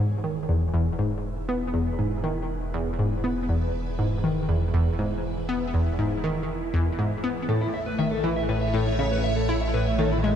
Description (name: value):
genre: ambient, sequencer-driven space music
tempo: 120 BPM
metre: 4/4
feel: straight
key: E major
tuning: A4 = 442 Hz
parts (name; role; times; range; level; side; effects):
- phased string machine; sustained chords; 0.0-10.4 s; A2 to C#5; -31 LUFS; right 1 dB; ensemble chorus, phaser
- analog pluck; riff; 0.0-10.4 s; E2 to E4; -25 LUFS; equal; chorus, tape echo
- warm sub bass; bass; 0.0-10.4 s; E1 to A1; -32 LUFS; equal; none
- electric guitar at the edge of break-up; arpeggios; 7.5-10.3 s; E4 to E5; -28 LUFS; left 3 dB; auto-pan, tape echo
room: moderate cathedral reverb, RT60 5.4 s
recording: in a vast, echoing space, cassette tape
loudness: -23 LUFS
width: side -9 dB against mid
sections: 0.0-10.4 A section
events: fade-in on string machine 0.0-10.4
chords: 0.0 E; 7.5 A